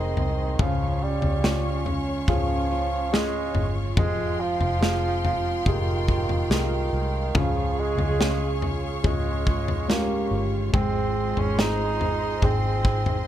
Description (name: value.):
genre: pop ballad.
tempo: 71 BPM.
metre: 4/4.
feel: straight.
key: unclear.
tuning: A4 = 440 Hz.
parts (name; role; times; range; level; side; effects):
warm bassoon; melody; 0.0-13.3 s; Eb3 to Eb4; -29 LUFS; right 3 dB; none.
mellow French horn section; second line; 0.0-13.3 s; C4 to Bb4; -32 LUFS; right 5 dB; ping-pong delay.
warm grand piano; accompaniment; 0.0-13.3 s; Db3 to C5; -32 LUFS; left 7 dB; none.
rich studio string section; sustained chords; 0.0-13.3 s; F4 to Db6; -35 LUFS; left 1 dB; none.
fingerpicked plugged-in steel-string acoustic guitar; arpeggios; 0.0-13.3 s; F2 to Ab4; -35 LUFS; right 6 dB; ping-pong delay.
vintage muted fingered electric bass; bass; 0.0-13.2 s; F1 to Db2; -28 LUFS; equal; none.
modern studio drum kit; drums; 0.2-13.3 s; kick drum, snare drum, toms; -26 LUFS; left 1 dB; none.
room: small room ambience.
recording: none.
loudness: -22 LUFS.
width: side -11 dB against mid.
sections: 0.0-13.3 A section.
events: none.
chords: 0.0 Ab; 0.6 Db; 4.0 Fmadd9; 7.4 Db; 10.7 Ab.